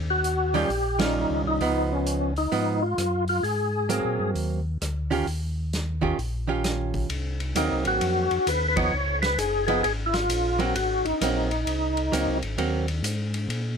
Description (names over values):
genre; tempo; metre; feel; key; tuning
soul jazz organ trio; 131 BPM; 4/4; swing 65% on 8ths; Ab mixolydian; A4 = 443 Hz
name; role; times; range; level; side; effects
mellow tonewheel organ; bass; 0.0-13.8 s; Gb1 to Bb2; -28 LUFS; left 1 dB; chorus vibrato, slow rotary speaker
percussive tonewheel organ; melody; 0.1-4.3, 7.6-12.4 s; Db4 to Db5; -25 LUFS; left 1 dB; slow rotary speaker, overdrive, chorus vibrato
vintage drum kit; drums; 0.2-13.6 s; hi-hat, kick drum, ride cymbal, rim click, snare drum; -32 LUFS; left 1 dB; none
archtop guitar, miked and amplified; accompaniment; 0.5-12.9 s; Eb3 to G4; -27 LUFS; right 5 dB; none
room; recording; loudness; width
light reverb; none; -23 LUFS; side -6 dB against mid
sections
0.0-7.1 A section; 7.1-13.8 A section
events
band accent 0.9, 8.7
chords
0.0 Eb9; 1.6 Db9; 3.4 Ab9; 5.3 Eb9; 7.1 Ab9; 8.9 Db; 10.8 Ab9